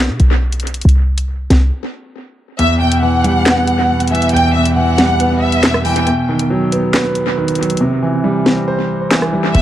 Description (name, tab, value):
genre	hip hop, drill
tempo	138 BPM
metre	4/4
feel	half-time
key	E harmonic minor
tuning	A4 = 442 Hz
part	short 808-style bass	bass	0.0-1.7, 9.5-9.6 s	E1 to B2	-12 LUFS	equal	none
part	drill drum kit	drums	0.2-9.6 s	handclaps, hi-hat, rim click, snare drum	-18 LUFS	equal	vintage 12-bit sampler grit, tape echo
part	warm symphonic violin section	melody	2.6-6.0, 9.5-9.6 s	E5 to G5	-17 LUFS	equal	tape echo
part	warm concert grand piano	accompaniment	2.6-9.6 s	E2 to C5	-14 LUFS	right 1 dB	tape echo
room	light reverb, small room reverb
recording	echo-heavy mix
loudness	-12 LUFS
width	side -12 dB against mid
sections	0.0-9.6 A section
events	break 0.0-2.6, 6.1-9.5; kick muted 2.6-9.5; hi-hats muted 7.8-9.5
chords	0.0 N.C.; 2.6 Em; 6.1 B; 7.8 C